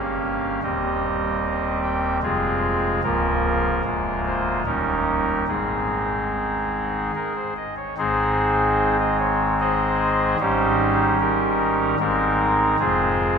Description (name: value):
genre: classical, chorale-style piece for pipe organ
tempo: 75 BPM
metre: 3/4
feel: straight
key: Ab major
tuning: A4 = 440 Hz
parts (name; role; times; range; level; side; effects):
- pipe organ, soft reed; solo; 0.0-13.4 s; Db1 to G5; -19 LUFS; equal; none
room: wet cathedral reverb, RT60 5.0 s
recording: minimal, uncompressed stereo recording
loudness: -19 LUFS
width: side -6 dB against mid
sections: 0.0-8.0 A section; 8.0-13.4 A section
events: none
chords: 0.0 Gdim; 0.6 Cm/Eb; 2.2 Fm; 3.0 Bbm/Db; 3.8 Bb7/D; 4.7 Eb7; 5.5 Ab; 10.4 Eb7/Ab; 12.0 Ab; 12.8 Fm